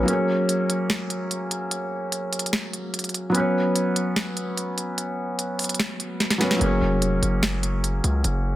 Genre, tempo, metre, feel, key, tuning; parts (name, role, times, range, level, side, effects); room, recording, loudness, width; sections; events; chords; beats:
hip hop, trap; 147 BPM; 4/4; half-time; F# major; A4 = 436 Hz
felt-muted upright piano; accompaniment; 0.0-8.6 s; F#3 to C#5; -24 LUFS; equal
distorted 808-style bass; bass; 0.0, 6.6-8.6 s; E#1 to C#2; -23 LUFS; equal; distortion
trap drum kit; drums; 0.1-8.3 s; hi-hat, snare drum; -25 LUFS; equal; overdrive
light reverb; dense, heavily limited modern master; -22 LUFS; side -14 dB against mid
0.0-8.6 A section
break 0.1-6.6; drum fill 6.2-6.6
0.1 F#add9; 3.3 Bsus2; 6.6 F#add9
| 0.08 0.49 0.90 1.30 | 1.71 2.12 2.53 2.94 | 3.35 3.75 4.16 4.57 | 4.98 5.39 5.79 6.20 | 6.61 7.02 7.43 7.83 | 8.24